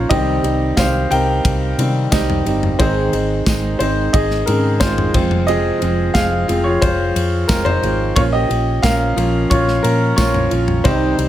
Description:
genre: piano-driven pop.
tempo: 89 BPM.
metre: 4/4.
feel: straight.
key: unclear.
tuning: A4 = 440 Hz.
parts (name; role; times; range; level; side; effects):
warm upright piano; accompaniment; 0.0-11.3 s; Db3 to G5; -18 LUFS; left 2 dB; none.
fingerpicked plugged-in steel-string acoustic guitar; riff; 0.0-11.3 s; F2 to Ab4; -22 LUFS; right 5 dB; none.
hollow-body short-scale fingered electric bass; bass; 0.0-11.3 s; F1 to C3; -20 LUFS; equal; none.
modern studio drum kit; drums; 0.1-11.3 s; crash cymbal, kick drum, ride cymbal, snare drum, toms; -20 LUFS; equal; none.
tambourine; percussion; 0.8-10.3 s; none; -32 LUFS; left 6 dB; none.
room: light reverb, small room ambience.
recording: none.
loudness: -14 LUFS.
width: side -12 dB against mid.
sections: 0.0-11.3 A section.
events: upright piano solo 0.0-11.3.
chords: 0.1 Cm; 2.8 Ab; 5.1 Fm; 8.2 Bbm.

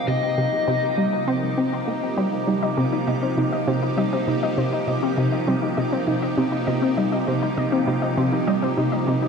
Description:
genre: ambient, sequencer-driven space music.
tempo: 100 BPM.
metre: 4/4.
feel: straight.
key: C minor.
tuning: A4 = 440 Hz.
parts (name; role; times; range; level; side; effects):
lead guitar through a small cranked amp; melody; 0.0-1.2 s; Eb5; -28 LUFS; left 4 dB; overdrive, ping-pong delay.
evolving wavetable pad; sustained chords; 0.0-9.3 s; C3 to G4; -26 LUFS; right 1 dB; phaser, built-in reverb.
bubbling stepped-filter texture; texture; 0.0-9.3 s; Eb4 to D6; -31 LUFS; equal; chorus, built-in reverb.
resonant blip pluck; riff; 0.1-9.2 s; C3 to C4; -24 LUFS; equal; chorus, ping-pong delay.
warbly dusty pluck; arpeggios; 2.5-9.3 s; C4 to Eb5; -24 LUFS; left 1 dB; chorus, auto-pan, ping-pong delay.
room: wet cathedral reverb, RT60 6.7 s.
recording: in a vast, echoing space, cassette tape.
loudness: -20 LUFS.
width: side -5 dB against mid.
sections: 0.0-9.3 A section.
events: fade-in on ambient pad 0.0-9.3; filter sweep on synth arpeggio sound 0.0-9.3.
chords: 0.0 Cm.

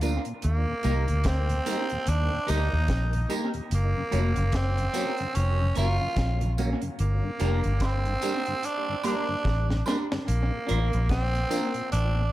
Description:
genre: roots reggae.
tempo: 73 BPM.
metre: 4/4.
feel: swing 59% on 16ths.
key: unclear.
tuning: A4 = 440 Hz.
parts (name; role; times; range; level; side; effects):
mellow tonewheel organ; accompaniment; 0.0-12.2 s; Eb2 to Eb4; -35 LUFS; left 2 dB; chorus vibrato, slow rotary speaker, analog delay.
semi-hollow electric guitar; accompaniment; 0.0-11.7 s; Bb3 to Bb4; -34 LUFS; right 2 dB; phaser, dub echo.
vintage muted fingered electric bass; bass; 0.0-12.3 s; F1 to Eb2; -25 LUFS; equal; none.
deep reggae drum kit; drums; 0.0-12.1 s; hi-hat, kick drum, snare drum; -33 LUFS; equal; analog delay.
tambourine and woodblock; percussion; 0.0-11.7 s; none; -39 LUFS; right 4 dB; none.
growling tenor saxophone; melody; 0.4-12.3 s; Bb3 to F4; -30 LUFS; right 2 dB; dub echo.
room: light reverb, small room ambience.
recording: echo-heavy mix.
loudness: -24 LUFS.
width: side -15 dB against mid.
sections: 0.0-12.3 A section.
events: drum fill 9.5-10.3.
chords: 0.4 Eb; 3.7 Gb; 7.0 Gm; 10.3 Bb.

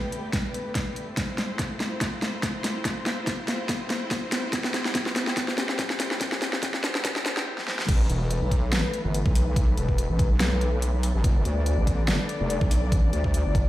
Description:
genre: heavy wobble dubstep.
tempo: 143 BPM.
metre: 4/4.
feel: swing 54% on 16ths, half-time.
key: A minor.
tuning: A4 = 440 Hz.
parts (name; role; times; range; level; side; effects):
warm studio string section; sustained chords; 0.0-13.7 s; D3 to D5; -32 LUFS; left 2 dB; vintage 12-bit sampler grit, sidechain pumping, low-pass filter.
dubstep drum kit; drums; 0.1-13.6 s; crash cymbal, hi-hat, snare drum; -27 LUFS; equal; overdrive.
electronic kick drum; drums; 0.3-13.6 s; none; -25 LUFS; equal; none.
wobble bass; bass; 7.9-13.7 s; E1 to D2; -24 LUFS; equal; chorus, overdrive.
room: light reverb, digital ambience.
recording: played on a big sound system in a bare room, stone room reverb, high-pass filter.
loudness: -23 LUFS.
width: side -15 dB against mid.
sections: 0.0-7.9 A section; 7.9-13.7 B section.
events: build-up 0.0-7.9; drum fill 0.0-7.5, 7.6-7.9; filter sweep 0.0-7.9; break 7.5-7.9; drop 7.9-13.7.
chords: 0.0 Gadd9; 1.2 Fmaj7; 4.5 C; 7.9 Asus2; 11.2 Gadd9.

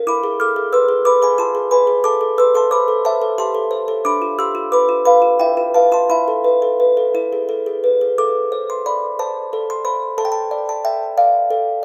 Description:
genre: classical, lullaby for music box.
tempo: 60 BPM (dotted quarters).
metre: 6/8.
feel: rubato.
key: A minor.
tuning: A4 = 440 Hz.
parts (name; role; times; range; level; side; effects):
music box; solo; 0.0-11.8 s; D4 to F6; -17 LUFS; equal; tape echo.
room: wet studio reverb, RT60 0.6 s.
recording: rough home demo mix.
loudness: -17 LUFS.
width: mono.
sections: 0.0-8.2 A section; 8.2-11.8 B section.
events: none.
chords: 0.1 E7; 2.0 Am; 4.0 Bdim/D; 6.1 Esus4; 7.1 E; 8.2 Am; 10.2 Dm/A.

